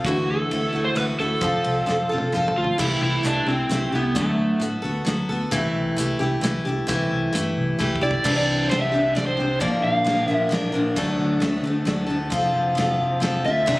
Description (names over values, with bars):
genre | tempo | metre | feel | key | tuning
folk rock and heartland rock | 132 BPM | 3/4 | straight | unclear | A4 = 440 Hz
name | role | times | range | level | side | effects
picked steel-string acoustic guitar | accompaniment | 0.0-13.8 s | Bb2 to Bb4 | -23 LUFS | left 1 dB | none
picked electric bass | bass | 0.0-13.8 s | F1 to A2 | -27 LUFS | equal | none
damped 70s drum kit | drums | 0.0-13.8 s | crash cymbal, hi-hat, kick drum, ride cymbal, rim click, snare drum, toms | -29 LUFS | equal | none
overdriven slide guitar | melody | 0.1-4.6, 8.0-10.5, 13.5-13.8 s | A3 to F5 | -23 LUFS | right 1 dB | none
room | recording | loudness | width
light reverb, small room ambience | recorded on a phone in the room, club reverb, compression | -20 LUFS | side -19 dB against mid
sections
0.0-2.8 A section; 2.8-8.2 B section; 8.2-13.8 C section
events
drum fill 1.9-2.8, 7.8-8.2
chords
0.0 Dadd9; 1.4 F; 2.8 C6; 4.2 D6; 5.5 C6; 8.2 Cadd9; 9.6 Bb; 11.0 D; 12.3 F